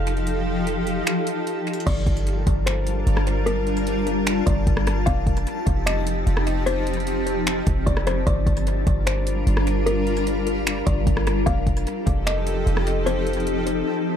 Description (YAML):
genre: hip hop, atmospheric cloud-rap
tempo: 150 BPM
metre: 4/4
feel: half-time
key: G minor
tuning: A4 = 440 Hz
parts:
  - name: granular cloud pad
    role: sustained chords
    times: 0.0-14.2 s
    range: F3 to A5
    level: -24 LUFS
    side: left 1 dB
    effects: built-in reverb, sidechain pumping
  - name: clean 808-style bass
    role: bass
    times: 0.0-13.8 s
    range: F1 to G1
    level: -24 LUFS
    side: equal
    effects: none
  - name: smooth R&B drum kit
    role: drums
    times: 0.1-13.8 s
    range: crash cymbal, finger snaps, hi-hat, kick drum, rim click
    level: -25 LUFS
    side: equal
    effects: overdrive, tape echo
  - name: buzzing kalimba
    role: melody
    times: 1.9-14.2 s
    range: Bb4 to F5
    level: -29 LUFS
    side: left 3 dB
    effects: low-pass filter, tape echo
room: little or no reverb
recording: echo-heavy mix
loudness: -20 LUFS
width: side -9 dB against mid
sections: 0.0-1.9 A section; 1.9-14.2 B section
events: kick muted 1.1-1.9; drums muted 13.9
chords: 0.0 F7; 1.9 Gm7; 5.1 F7; 8.3 Gm7; 11.5 F7